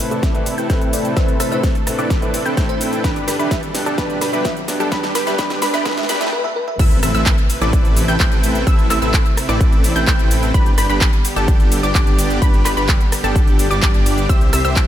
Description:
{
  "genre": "EDM, festival progressive house",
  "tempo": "128 BPM",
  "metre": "4/4",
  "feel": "straight",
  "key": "A minor",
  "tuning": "A4 = 440 Hz",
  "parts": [
    { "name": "clear concert grand piano", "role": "accompaniment", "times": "0.0-6.3 s", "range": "G2 to B4", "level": "-25 LUFS", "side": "equal", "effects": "vintage 12-bit sampler grit, sidechain pumping, tape echo" },
    { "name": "supersaw pad", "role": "sustained chords", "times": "0.0-14.9 s", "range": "B2 to B4", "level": "-27 LUFS", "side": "right 1 dB", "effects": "sidechain pumping" },
    { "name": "big-room dance drum kit", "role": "drums", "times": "0.0-14.9 s", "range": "crash cymbal, handclaps, hi-hat, rim click, shaker, snare drum, toms", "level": "-24 LUFS", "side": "equal", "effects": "high-pass filter on snare, high-pass filter on toms, high-pass filter on hats, high-pass filter on perc, high-pass filter on cymbals, high-pass filter on room" },
    { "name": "riser and impact", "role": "sound effects", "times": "2.4-8.7 s", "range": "none", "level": "-32 LUFS", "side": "equal", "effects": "none" },
    { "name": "wide unison pluck", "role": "arpeggios", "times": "0.1-14.9 s", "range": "A5 to G6", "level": "-25 LUFS", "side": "left 1 dB", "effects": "sidechain pumping, tape echo" },
    { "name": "dense compressed supersaw", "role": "riff", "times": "0.1-14.9 s", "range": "C4 to G5", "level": "-22 LUFS", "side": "equal", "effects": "sidechain pumping, low-pass filter, tape echo" },
    { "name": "electronic kick drum", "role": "drums", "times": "0.2-14.9 s", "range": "none", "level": "-16 LUFS", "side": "equal", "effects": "none" },
    { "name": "bell-like FM electric piano", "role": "melody", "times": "0.9-6.8 s", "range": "B4 to E5", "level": "-27 LUFS", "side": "equal", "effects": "chorus, phaser, tape echo" },
    { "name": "wide detuned saw bass", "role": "bass", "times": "6.8-14.8 s", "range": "G1 to C2", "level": "-20 LUFS", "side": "equal", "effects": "chorus, sidechain pumping" }
  ],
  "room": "light reverb",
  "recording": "high-pass filter",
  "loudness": "-14 LUFS",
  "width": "side -11 dB against mid",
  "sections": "0.0-6.8 A section; 6.8-14.9 B section",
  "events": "build-up 0.0-6.8; drum fill 0.0-6.3, 6.3-6.8; filter sweep on supersaw synth 0.0-6.8; filter sweep on synth pluck 0.0-6.8; filter sweep 0.0-6.8; riser 2.4-6.3; break 6.3-6.8; drop 6.8-14.9; impact 6.8-8.7",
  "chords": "0.0 Amadd9; 3.0 G; 6.8 Amadd9; 10.5 G; 14.3 C"
}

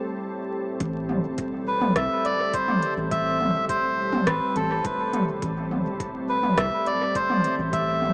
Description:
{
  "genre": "ambient dub",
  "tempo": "104 BPM",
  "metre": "4/4",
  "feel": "straight",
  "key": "A minor",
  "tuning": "A4 = 440 Hz",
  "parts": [
    { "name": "soft additive organ-like pad", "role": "sustained chords", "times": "0.0-8.1 s", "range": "A2 to A4", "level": "-29 LUFS", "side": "equal", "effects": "ensemble chorus, built-in reverb" },
    { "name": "round analog bass", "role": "bass", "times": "0.8-8.1 s", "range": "E1 to C2", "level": "-32 LUFS", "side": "equal", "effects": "none" },
    { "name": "electronic kick drum", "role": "drums", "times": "0.8-7.8 s", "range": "none", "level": "-34 LUFS", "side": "equal", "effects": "none" },
    { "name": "organic electronic drum kit", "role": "drums", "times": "0.8-8.1 s", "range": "hi-hat, rim click, toms", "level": "-27 LUFS", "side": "equal", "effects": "overdrive, dub echo" },
    { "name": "melodica", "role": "melody", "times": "1.7-8.1 s", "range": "A4 to E5", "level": "-24 LUFS", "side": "equal", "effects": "dub echo" }
  ],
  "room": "moderate spring reverb, RT60 1.7 s, digital ambience",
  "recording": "echo-heavy mix, vinyl crackle, small speaker sound",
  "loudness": "-22 LUFS",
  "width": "side -34 dB against mid",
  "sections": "0.8-8.1 A section",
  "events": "none",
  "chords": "0.0 Am7"
}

